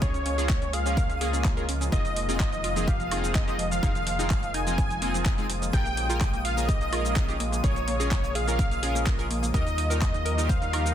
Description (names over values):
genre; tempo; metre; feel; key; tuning
progressive house; 126 BPM; 4/4; straight; F minor; A4 = 441 Hz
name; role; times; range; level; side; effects
wide unison lead; melody; 0.0-10.9 s; Db5 to Ab5; -31 LUFS; equal; dub echo
lush unison pad; sustained chords; 0.0-10.9 s; Db3 to F4; -35 LUFS; left 1 dB; chorus, sidechain pumping
analog pluck; arpeggios; 0.0-10.9 s; F3 to C5; -36 LUFS; equal; chorus, sidechain pumping, dub echo
chorused polysynth; stabs; 0.0-10.9 s; Bb3 to Bb4; -35 LUFS; right 1 dB; sidechain pumping, dub echo
tight sequencer bass; bass; 0.0-10.9 s; F1 to Eb2; -30 LUFS; equal; sidechain pumping
electronic kick drum; drums; 0.0-10.6 s; none; -26 LUFS; equal; studio reverb
pop drum kit; drums; 0.0-10.9 s; cabasa, handclaps, hi-hat, woodblock; -34 LUFS; right 1 dB; studio reverb
downlifter; sound effects; 0.0-1.9 s; none; barely audible; none; none
twinkling granular texture; texture; 0.0-10.9 s; Eb6; -40 LUFS; equal; built-in reverb, sidechain pumping
room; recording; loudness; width
digital ambience; dense, heavily limited modern master; -23 LUFS; side -10 dB against mid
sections
0.0-10.9 A section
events
none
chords
0.0 Db6; 1.9 Fm7; 5.7 Bbm7; 9.5 Ebadd9